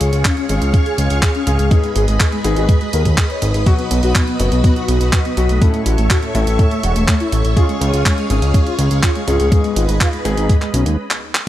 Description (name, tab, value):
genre	italo disco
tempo	123 BPM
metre	4/4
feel	straight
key	G# dorian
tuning	A4 = 440 Hz
part	mellow synth brass	melody	0.0-10.9 s	G#3 to C#5	-22 LUFS	equal	chorus, digital delay
part	string machine, full ensemble	sustained chords	0.0-11.0 s	F#4 to C#6	-24 LUFS	equal	ensemble chorus
part	clear grand piano	stabs	0.0-10.5 s	G#2 to A4	-24 LUFS	left 4 dB	none
part	fat analog bass	bass	0.0-11.0 s	E1 to D#2	-16 LUFS	equal	none
part	clean 12-bit digital drum machine	drums	0.0-11.4 s	handclaps, hi-hat	-22 LUFS	right 1 dB	none
part	electronic kick drum	drums	0.2-10.6 s	none	-14 LUFS	equal	none
room	little or no reverb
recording	none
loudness	-13 LUFS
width	side -13 dB against mid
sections	0.0-11.5 A section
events	stop 11.0-11.5; drum fill 11.1-11.5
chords	0.0 C#; 1.7 G#m; 3.7 B; 5.6 A; 7.6 C#; 9.5 G#m